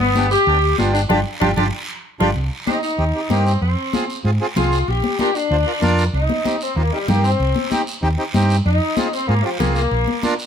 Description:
latin, cumbia; 191 BPM; 4/4; straight; C minor; A4 = 445 Hz
dark saxophone section; melody; 0.0-10.4 s; F3 to G4; -21 LUFS; left 2 dB
clear clarinet; second line; 0.0-2.3 s; B3 to G4; -24 LUFS; right 4 dB
hollow-body short-scale fingered electric bass; bass; 0.0-10.0 s; G1 to Ab2; -18 LUFS; right 1 dB
congas; percussion; 0.0-10.4 s; -23 LUFS; left 3 dB
accordion; accompaniment; 0.2-10.3 s; B3 to C5; -23 LUFS; right 1 dB
guiro; percussion; 0.2-10.5 s; -31 LUFS; right 2 dB
light reverb; close, detailed microphones; -16 LUFS; side -8 dB against mid
0.0-2.4 A section; 2.4-10.5 B section
band accent 1.1-2.4; drum fill 1.4-2.4; saxophone section solo 2.4-10.5
0.0 G7; 2.4 Cm; 3.6 Fm; 4.9 Bb; 6.1 Cm; 8.7 Fm; 9.9 Bb
0.16 0.47 0.79 | 1.10 1.42 1.73 2.04 | 2.36 2.67 2.99 3.31 | 3.62 3.93 4.25 4.56 | 4.88 5.19 5.51 5.82 | 6.14 6.45 6.77 7.08 | 7.40 7.71 8.03 8.34 | 8.66 8.97 9.29 9.60 | 9.91 10.23

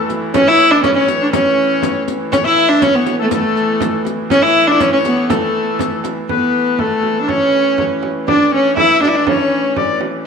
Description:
medieval dance; 121 BPM; 2/4; straight; A major; A4 = 441 Hz
warm viola da gamba; melody; 0.0-10.0 s; A3 to E4; -14 LUFS; right 1 dB
bright reedy bass recorder; second line; 0.0-10.0 s; A4 to E5; -19 LUFS; left 7 dB
warm hurdy-gurdy; drone; 0.0-10.3 s; A2 to E3; -24 LUFS; right 2 dB
frame drum; percussion; 0.1-10.2 s; -24 LUFS; right 11 dB
riq; percussion; 0.1-6.3 s; -25 LUFS; left 12 dB
wet echo chamber reverb, RT60 1.8 s, studio reverb; 1960s-style stereo with parts hard left and right; -12 LUFS; side -6 dB against mid
0.0-6.3 A section; 6.3-10.3 B section
| 0.33 0.83 | 1.33 1.82 | 2.32 2.82 | 3.31 3.81 | 4.31 4.80 | 5.30 5.80 | 6.29 6.79 | 7.29 7.78 | 8.28 8.77 | 9.27 9.77 | 10.26

